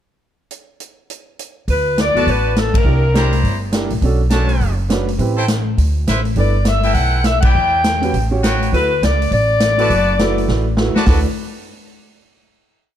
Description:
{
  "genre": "jazz, big band swing",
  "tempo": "204 BPM",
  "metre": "4/4",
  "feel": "swing 62% on 8ths",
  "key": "D major",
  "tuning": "A4 = 440 Hz",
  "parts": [
    { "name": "swinging big-band drum kit", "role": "drums", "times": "0.5-11.2 s", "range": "hi-hat, kick drum, ride cymbal, snare drum", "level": "-19 LUFS", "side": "equal", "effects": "none" },
    { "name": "bright saxophone section", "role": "melody", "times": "1.7-3.3, 6.4-10.7 s", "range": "A4 to G5", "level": "-18 LUFS", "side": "left 3 dB", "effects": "none" },
    { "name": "upright bass", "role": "bass", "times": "1.7-11.2 s", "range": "F#1 to E2", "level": "-17 LUFS", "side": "equal", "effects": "none" },
    { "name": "warm baby grand piano", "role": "accompaniment", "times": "2.1-11.2 s", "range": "B3 to C#5", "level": "-23 LUFS", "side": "right 6 dB", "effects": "none" },
    { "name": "brilliant trumpet section", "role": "stabs", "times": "2.2-11.2 s", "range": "D4 to Bb5", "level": "-24 LUFS", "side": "right 1 dB", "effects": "none" }
  ],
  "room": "light reverb",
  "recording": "dark, warm production",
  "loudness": "-13 LUFS",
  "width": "side -10 dB against mid",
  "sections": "0.5-1.7 pickup bar; 1.7-11.1 A section; 11.1-12.2 final chord",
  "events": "band accent 2.7, 7.4; drum fill 10.5-11.1",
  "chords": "0.5 N.C.; 1.7 D6; 2.9 C9; 4.0 Bm9; 5.2 Am7; 5.8 Dsus2; 6.4 G69; 7.6 Em7; 8.1 A13; 8.7 D6",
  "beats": "| 0.51 0.80 1.10 1.39 | 1.68 1.98 2.27 2.56 | 2.85 3.15 3.44 3.73 | 4.03 4.32 4.62 4.91 | 5.20 5.50 5.79 6.08 | 6.38 6.67 6.97 7.26 | 7.55 7.85 8.14 8.44 | 8.73 9.02 9.32 9.61 | 9.90 10.20 10.49 10.78 | 11.07"
}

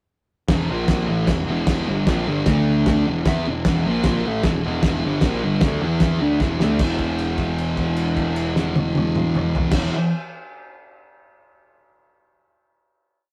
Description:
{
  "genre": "garage rock duo or trio",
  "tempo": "152 BPM",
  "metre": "4/4",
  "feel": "straight",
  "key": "unclear",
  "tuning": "A4 = 440 Hz",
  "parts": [
    { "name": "thick fuzz guitar", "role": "riff", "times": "0.5-9.9 s", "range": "E2 to E4", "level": "-23 LUFS", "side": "equal", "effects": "distortion" },
    { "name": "fuzz picked electric bass", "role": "bass", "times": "0.5-9.9 s", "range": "E1 to E2", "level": "-30 LUFS", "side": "equal", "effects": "overdrive" },
    { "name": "cloth-damped thuddy drum kit", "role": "drums", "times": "0.5-9.8 s", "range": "crash cymbal, kick drum, snare drum, toms", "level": "-25 LUFS", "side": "equal", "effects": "none" }
  ],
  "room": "light reverb",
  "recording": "rough rehearsal-room recording, tube saturation",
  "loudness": "-21 LUFS",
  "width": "mono",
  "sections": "0.5-6.8 riff; 6.8-10.0 final chord",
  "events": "drum fill 6.4-6.8; held note 6.8-9.7",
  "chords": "0.5 E5; 0.7 A#5; 1.1 E5; 2.5 D5; 3.1 E5; 3.9 A#5; 4.2 E5",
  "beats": "| 0.49 0.89 1.29 1.68 | 2.08 2.48 2.87 3.27 | 3.66 4.05 4.45 4.84 | 5.23 5.62 6.02 6.41 | 6.80 7.20 7.59 7.99 | 8.38 8.78 9.18 9.57"
}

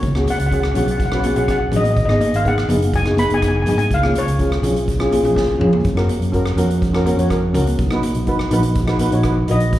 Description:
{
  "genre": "calypso",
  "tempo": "124 BPM",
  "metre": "4/4",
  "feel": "straight",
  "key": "unclear",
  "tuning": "A4 = 439 Hz",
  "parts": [
    { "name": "steel pan", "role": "melody", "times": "0.0-5.6, 9.5-9.8 s", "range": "C#5 to B5", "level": "-22 LUFS", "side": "left 1 dB", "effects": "slapback echo, ping-pong delay" },
    { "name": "fingered electric bass", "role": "bass", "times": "0.0-9.8 s", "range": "F#1 to G#2", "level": "-19 LUFS", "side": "right 1 dB", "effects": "none" },
    { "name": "street-band drum kit", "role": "drums", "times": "0.0-9.8 s", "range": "hi-hat, kick drum, rim click, snare drum, toms", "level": "-23 LUFS", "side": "equal", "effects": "none" },
    { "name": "steel pan", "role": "accompaniment", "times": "0.2-9.7 s", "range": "B3 to C#5", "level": "-20 LUFS", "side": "left 1 dB", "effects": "slapback echo" },
    { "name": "congas", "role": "percussion", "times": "0.2-9.6 s", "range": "none", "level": "-26 LUFS", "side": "left 1 dB", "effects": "slapback echo" }
  ],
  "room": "light reverb, studio ambience",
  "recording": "live gig heard through the venue's PA, club ambience",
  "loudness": "-15 LUFS",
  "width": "side -14 dB against mid",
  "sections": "0.0-9.8 A section",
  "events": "drum fill 5.4-5.8",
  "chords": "0.0 C#7sus4; 2.0 G#m7; 3.9 C#7; 5.8 F#maj7; 7.8 Bmaj7",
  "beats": "| 0.03 0.51 1.00 1.48 | 1.97 2.45 2.93 3.42 | 3.90 4.39 4.87 5.36 | 5.84 6.33 6.81 7.30 | 7.79 8.27 8.76 9.24 | 9.73"
}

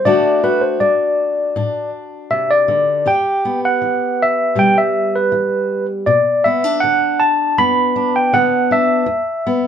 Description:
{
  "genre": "acoustic folk duo or small band",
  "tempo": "80 BPM",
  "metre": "4/4",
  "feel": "straight",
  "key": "unclear",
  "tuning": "A4 = 441 Hz",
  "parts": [
    { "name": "tine electric piano", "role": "melody", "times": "0.0-9.7 s", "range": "B4 to B5", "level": "-15 LUFS", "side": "equal", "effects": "medium tremolo" },
    { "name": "fingerpicked steel-string acoustic guitar", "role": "accompaniment", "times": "0.0-9.7 s", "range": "E2 to G4", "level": "-19 LUFS", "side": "left 2 dB", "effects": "none" }
  ],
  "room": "moderate studio ambience, RT60 0.5 s",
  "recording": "minimal, uncompressed stereo recording",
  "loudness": "-13 LUFS",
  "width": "side -8 dB against mid",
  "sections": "0.0-6.1 A section; 6.1-9.7 B section",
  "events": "tine electric piano solo 0.0-6.1",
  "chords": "0.0 D; 3.1 Em; 6.1 Bm; 9.1 E5",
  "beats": "| 0.04 0.80 1.55 2.30 | 3.06 3.81 4.56 5.31 | 6.07 6.82 7.57 8.33 | 9.08"
}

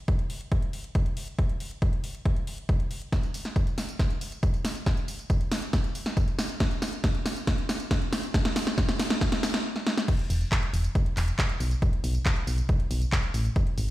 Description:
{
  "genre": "uplifting trance",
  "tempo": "138 BPM",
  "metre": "4/4",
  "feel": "straight",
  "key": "E major",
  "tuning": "A4 = 440 Hz",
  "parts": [
    { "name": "big-room dance drum kit", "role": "drums", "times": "0.1-13.9 s", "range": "crash cymbal, handclaps, hi-hat, snare drum, tambourine", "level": "-30 LUFS", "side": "equal", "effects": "sidechain pumping on hats, sidechain pumping on perc, sidechain pumping on cymbals" },
    { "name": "electronic kick drum", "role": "drums", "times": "0.1-13.6 s", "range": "none", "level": "-26 LUFS", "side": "equal", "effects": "none" },
    { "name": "solid FM bass", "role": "bass", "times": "10.3-13.9 s", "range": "E1 to B1", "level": "-26 LUFS", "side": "equal", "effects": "sidechain pumping" }
  ],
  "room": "light reverb, digital ambience",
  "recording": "played on a big sound system in a bare room, stone room reverb",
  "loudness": "-25 LUFS",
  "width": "side -16 dB against mid",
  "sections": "0.0-10.1 A section; 10.1-13.9 B section",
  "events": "build-up 0.0-10.1; drum fill 3.1-9.6, 9.8-10.1; stop 9.6-10.1; drop 10.1-13.9",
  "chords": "none",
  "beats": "0.08 0.52 0.95 | 1.39 1.82 2.26 2.69 | 3.13 3.56 4.00 4.43 | 4.87 5.30 5.73 6.17 | 6.60 7.04 7.47 7.91 | 8.34 8.78 9.21 9.65 | 10.08 10.52 10.95 11.39 | 11.82 12.26 12.69 13.13 | 13.56"
}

